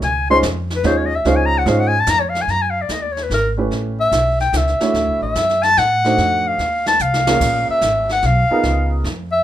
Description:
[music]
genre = jazz, small-group swing and bop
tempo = 146 BPM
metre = 3/4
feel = swing 67% on 8ths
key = unclear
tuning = A4 = 441 Hz
[part]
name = warm clarinet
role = melody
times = 0.0-9.4 s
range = A#4 to C6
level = -16 LUFS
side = left 1 dB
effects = none
[part]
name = warm upright piano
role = accompaniment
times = 0.0-9.0 s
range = Ab3 to Db5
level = -20 LUFS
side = right 3 dB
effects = none
[part]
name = upright bass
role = bass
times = 0.0-9.4 s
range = G#1 to A2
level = -21 LUFS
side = equal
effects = none
[part]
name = jazz brush drum kit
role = drums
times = 0.0-9.4 s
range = brushed snare drum, crash cymbal, hi-hat, kick drum, snare drum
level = -26 LUFS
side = right 1 dB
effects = none
[sound]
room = moderate club reverb, RT60 0.6 s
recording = minimal, uncompressed stereo recording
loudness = -14 LUFS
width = side -12 dB against mid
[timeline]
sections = 0.0-2.5 A section; 2.5-9.4 A section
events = clarinet solo 0.0-9.4; drum fill 7.0-7.4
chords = 0.0 Dbmaj7; 2.5 F#5; 3.7 A9; 4.9 Dmaj7; 6.2 F7b9; 7.4 A#m7; 8.6 C#13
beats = | 0.03 0.44 0.84 | 1.25 1.67 2.08 | 2.48 2.90 3.31 | 3.72 4.13 4.54 | 4.95 5.36 5.77 | 6.18 6.59 7.00 | 7.41 7.82 8.23 | 8.64 9.05

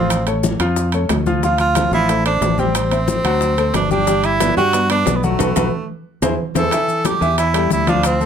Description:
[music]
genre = latin, salsa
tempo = 182 BPM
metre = 4/4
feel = straight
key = A minor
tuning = A4 = 440 Hz
[part]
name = breathy tenor saxophone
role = melody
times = 0.0-8.3 s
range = A3 to A4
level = -18 LUFS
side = right 3 dB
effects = none
[part]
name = clear concert grand piano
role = accompaniment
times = 0.0-8.3 s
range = E3 to G5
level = -21 LUFS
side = left 3 dB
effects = none
[part]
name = fingered electric bass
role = bass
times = 0.0-8.3 s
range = G1 to G2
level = -20 LUFS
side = equal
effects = none
[part]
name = bongos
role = percussion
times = 0.1-8.2 s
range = none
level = -27 LUFS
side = left 8 dB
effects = none
[part]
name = congas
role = percussion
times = 0.1-8.3 s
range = none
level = -24 LUFS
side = left 2 dB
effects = none
[part]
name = maracas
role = percussion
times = 0.1-8.3 s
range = none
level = -30 LUFS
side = left 7 dB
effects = none
[part]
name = timbales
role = percussion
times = 0.1-8.2 s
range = none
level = -25 LUFS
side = right 8 dB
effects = none
[sound]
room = moderate small room reverb, RT60 0.6 s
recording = close, detailed microphones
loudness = -14 LUFS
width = side -8 dB against mid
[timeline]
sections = 0.0-6.7 A section; 6.7-8.3 B section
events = band accent 5.4-6.7; drum fill 6.2-6.7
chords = 0.1 Aaug; 1.4 Dm7; 2.8 Am7; 3.4 D7; 4.1 Gmaj7; 5.4 B5; 6.1 Eaug; 6.7 A5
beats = | 0.10 0.44 0.77 1.10 | 1.43 1.76 2.09 2.42 | 2.75 3.08 3.41 3.74 | 4.07 4.40 4.73 5.07 | 5.39 5.72 6.06 6.39 | 6.72 7.05 7.38 7.71 | 8.04

